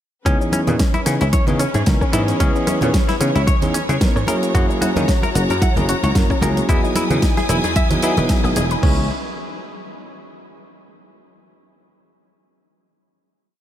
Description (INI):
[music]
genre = nu-disco, nu disco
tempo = 112 BPM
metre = 4/4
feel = swing 55% on 16ths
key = C# dorian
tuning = A4 = 438 Hz
[part]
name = bell-like tine electric piano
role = accompaniment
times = 0.3-9.0 s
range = E3 to D#5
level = -22 LUFS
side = equal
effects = vintage 12-bit sampler grit, ping-pong delay
[part]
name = clear symphonic string section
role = sustained chords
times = 0.3-9.1 s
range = C#4 to D#6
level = -26 LUFS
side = right 1 dB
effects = sidechain pumping
[part]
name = analog pluck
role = arpeggios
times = 0.3-9.1 s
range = A#3 to D#5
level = -29 LUFS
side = left 3 dB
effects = chorus, sidechain pumping, diffuse ambient delay
[part]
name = direct-recorded clean electric guitar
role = riff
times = 0.3-9.1 s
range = C#3 to F#5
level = -26 LUFS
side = left 2 dB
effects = wide subtle chorus, ping-pong delay
[part]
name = dry thumbed slap bass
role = bass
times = 0.3-9.1 s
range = E1 to D#3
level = -21 LUFS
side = equal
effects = sidechain pumping
[part]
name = pop drum kit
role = drums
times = 0.3-9.0 s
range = crash cymbal, kick drum, toms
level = -18 LUFS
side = equal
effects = none
[part]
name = pop drum kit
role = drums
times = 0.3-8.8 s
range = hi-hat, rim click, shaker, snare drum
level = -26 LUFS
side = right 1 dB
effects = none
[part]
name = congas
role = percussion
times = 0.5-8.7 s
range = none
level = -27 LUFS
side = right 2 dB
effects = none
[sound]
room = light reverb, digital ambience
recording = none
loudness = -15 LUFS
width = side -11 dB against mid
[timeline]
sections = 0.3-8.8 drop; 8.8-11.0 final chord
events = drop 0.3-8.8; band accent 8.3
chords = 0.3 C#m7; 4.3 F#7; 6.7 Emaj7; 8.8 C#m7